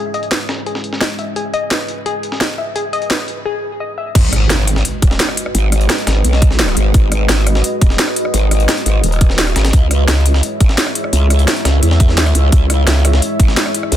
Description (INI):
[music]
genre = dark technical drum and bass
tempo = 172 BPM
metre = 4/4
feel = straight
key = G# minor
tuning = A4 = 440 Hz
[part]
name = deep dark ambient pad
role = sustained chords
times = 0.0-14.0 s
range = G#3 to E5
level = -22 LUFS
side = equal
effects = chorus, built-in reverb, sidechain pumping
[part]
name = warbly dusty pluck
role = arpeggios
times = 0.0-4.0 s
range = G#4 to E5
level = -22 LUFS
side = left 3 dB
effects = chorus, sidechain pumping, ping-pong delay
[part]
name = breakbeat sampler-style drum kit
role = drums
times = 0.1-14.0 s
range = hi-hat, snare drum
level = -24 LUFS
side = left 1 dB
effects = high-pass filter on hats, low-pass filter on hats, high-pass filter on snare, low-pass filter on snare
[part]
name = drum and bass drum kit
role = drums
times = 0.3-14.0 s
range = crash cymbal, hi-hat, rim click, snare drum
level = -18 LUFS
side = equal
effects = none
[part]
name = growl bass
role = bass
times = 4.2-14.0 s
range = D#1 to E2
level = -13 LUFS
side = equal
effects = chorus, tube saturation, sidechain pumping
[part]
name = electronic kick drum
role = drums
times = 4.2-13.5 s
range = none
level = -11 LUFS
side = equal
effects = none
[part]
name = impact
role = sound effects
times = 4.2-5.5 s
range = none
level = -21 LUFS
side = right 1 dB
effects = none
[sound]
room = digital ambience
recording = dense, heavily limited modern master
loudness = -12 LUFS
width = side -12 dB against mid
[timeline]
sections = 0.0-4.2 A section; 4.2-14.0 B section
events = filter sweep on ambient pad 0.0-4.2; filter sweep on synth arpeggio sound 0.0-4.2; break 3.5-4.2; drop 4.2-14.0; impact 4.2-5.5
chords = 0.0 C#m; 4.2 G#m7; 9.7 C#m